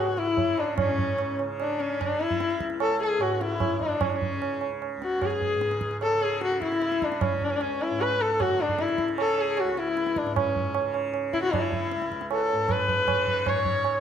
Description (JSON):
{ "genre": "indian classical, Hindustani", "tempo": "151 BPM", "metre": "4/4", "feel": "straight", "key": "C# raga bhairavi", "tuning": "A4 = 442 Hz", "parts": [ { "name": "dark sarangi", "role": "melody", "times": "0.0-14.0 s", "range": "C#4 to C#5", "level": "-26 LUFS", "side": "left 3 dB", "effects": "slapback echo" }, { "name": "hand-pumped harmonium", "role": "second line", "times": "0.0-14.0 s", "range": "C#4 to C#5", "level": "-36 LUFS", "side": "left 2 dB", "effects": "none" }, { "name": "tanpura", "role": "drone", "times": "0.0-14.0 s", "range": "C#2 to C#3", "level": "-35 LUFS", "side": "equal", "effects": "none" }, { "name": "tabla", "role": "percussion", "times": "0.2-14.0 s", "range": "none", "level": "-29 LUFS", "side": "right 8 dB", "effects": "none" } ], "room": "light reverb", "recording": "close, detailed microphones", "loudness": "-24 LUFS", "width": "side -8 dB against mid", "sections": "0.8-13.5 A section", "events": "speeding up 0.0-14.0", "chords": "none" }